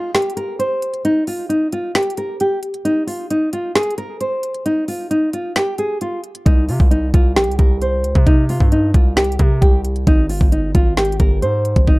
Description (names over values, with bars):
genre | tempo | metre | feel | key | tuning
hip hop, trap | 133 BPM | 4/4 | half-time | C minor | A4 = 440 Hz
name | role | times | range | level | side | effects
nylon-string guitar | melody | 0.0-12.0 s | Eb4 to C5 | -18 LUFS | equal | none
trap drum kit | drums | 0.1-12.0 s | hi-hat, kick drum, snare drum | -15 LUFS | equal | none
distorted 808-style bass | bass | 6.5-12.0 s | G1 to C3 | -19 LUFS | equal | distortion
room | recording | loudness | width
little or no reverb | dark, warm production | -14 LUFS | side -23 dB against mid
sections
0.0-12.0 A section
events
break 0.0-6.5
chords
0.0 N.C.; 6.5 C5; 10.1 Ab